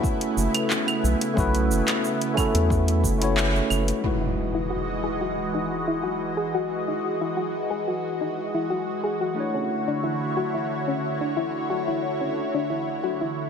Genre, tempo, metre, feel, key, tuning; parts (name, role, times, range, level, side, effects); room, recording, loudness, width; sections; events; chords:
sunset chillout; 90 BPM; 4/4; straight; E major; A4 = 440 Hz
tine electric piano; accompaniment; 0.0-13.5 s; G#3 to C#5; -28 LUFS; equal; auto-pan, tape echo
lush unison pad; sustained chords; 0.0-13.5 s; C#3 to D#5; -28 LUFS; equal; chorus, phaser
deep house drum kit; drums; 0.0-4.0 s; cabasa, claves, handclaps, hi-hat; -27 LUFS; right 1 dB; overdrive, low-pass filter on perc, low-pass filter on snare, low-pass filter on hats, low-pass filter on room
electronic kick drum; drums; 0.0-3.2 s; -26 LUFS; equal; overdrive
round analog bass; bass; 0.4-3.9 s; F#1 to E2; -23 LUFS; equal
impact; sound effects; 4.0-6.7 s; -31 LUFS; equal
soft round pluck; arpeggios; 4.2-13.4 s; C#4 to G#4; -28 LUFS; left 3 dB; chorus, tape echo
moderate lush hall reverb, RT60 2.1 s; -22 LUFS; side -7 dB against mid
0.0-4.0 A section; 4.0-13.5 B section
filter sweep on tine electric piano 0.0-4.0; band accent 3.4-3.7; impact 4.0-6.7; filter sweep on synth arpeggio sound 4.0-13.5
0.0 B9sus4; 4.0 Emaj9; 9.4 Dmaj9